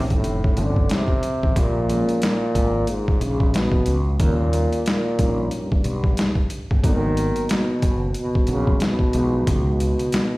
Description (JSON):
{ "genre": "hip hop, jazz-hop", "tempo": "91 BPM", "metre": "4/4", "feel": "swing 58% on 16ths", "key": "unclear", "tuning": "A4 = 440 Hz", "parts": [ { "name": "breathy trombone", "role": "melody", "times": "0.0-10.4 s", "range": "G2 to D#3", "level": "-23 LUFS", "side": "equal", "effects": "analog delay" }, { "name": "dark concert grand piano", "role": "accompaniment", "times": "0.0-10.1 s", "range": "Eb3 to F#4", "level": "-27 LUFS", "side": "right 1 dB", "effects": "none" }, { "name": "mellow fretless electric bass", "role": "bass", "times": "0.0-9.9 s", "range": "F1 to D#2", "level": "-23 LUFS", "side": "equal", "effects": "none" }, { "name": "boom bap sampler-style drum kit", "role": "drums", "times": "0.1-10.3 s", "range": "hi-hat, kick drum, snare drum", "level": "-21 LUFS", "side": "equal", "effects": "overdrive" } ], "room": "light reverb", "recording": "played on a big sound system in a bare room, stone room reverb", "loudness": "-18 LUFS", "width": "side -20 dB against mid", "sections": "0.0-10.4 A section", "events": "none", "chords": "0.2 F7b13; 1.6 A#m7; 4.2 D#7; 6.8 G#m9; 9.5 C#9" }